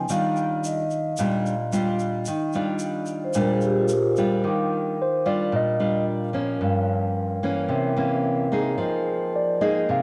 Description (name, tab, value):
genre	bossa nova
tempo	110 BPM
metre	4/4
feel	straight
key	Eb major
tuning	A4 = 440 Hz
part	nylon-string guitar	accompaniment	0.0-10.0 s	G2 to Ab4	-26 LUFS	equal	cassette tape
part	vibraphone with soft mallets	accompaniment	0.0-10.0 s	F3 to D6	-29 LUFS	equal	cassette tape
part	egg shaker	percussion	0.1-4.4 s	none	-42 LUFS	equal	none
part	mellow tine electric piano	melody	5.0-6.0, 9.4-10.0 s	C5 to F5	-27 LUFS	equal	cassette tape
room	wet lush hall reverb, RT60 2.6 s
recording	home recording on cassette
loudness	-24 LUFS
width	mono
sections	0.0-4.4 A section; 4.4-10.0 A section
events	vibraphone solo 0.0-4.4; tine electric piano solo 4.4-10.0; vibraphone fill 7.7-8.8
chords	0.1 Ebmaj9; 6.6 Gm7b5; 7.7 C7b9; 8.8 Fm11